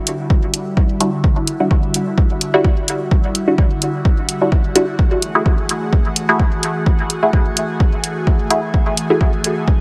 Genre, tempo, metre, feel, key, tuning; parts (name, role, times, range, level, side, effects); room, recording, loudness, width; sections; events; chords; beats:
dub techno; 128 BPM; 4/4; swing 55% on 16ths; A4 = 437 Hz
airy breathy pad; sustained chords; 0.0-9.8 s; D3 to G#4; -25 LUFS; equal; chorus, phaser, sidechain pumping
electronic hi-hat; drums; 0.1-9.5 s; -20 LUFS; equal
electronic kick drum; drums; 0.3-9.8 s; -17 LUFS; equal
filtered dub chord stab; stabs; 1.0-9.2 s; G3 to G#4; -21 LUFS; equal; chorus, phaser, sidechain pumping, dub echo
light reverb; -16 LUFS; mono
0.0-9.8 A section
filter sweep on synth stab 0.0-9.8
0.0 Em9; 5.0 F#m9
0.30 0.77 | 1.24 1.71 2.18 2.65 | 3.11 3.58 4.05 4.52 | 4.99 5.46 5.93 6.39 | 6.86 7.33 7.80 8.27 | 8.74 9.21 9.68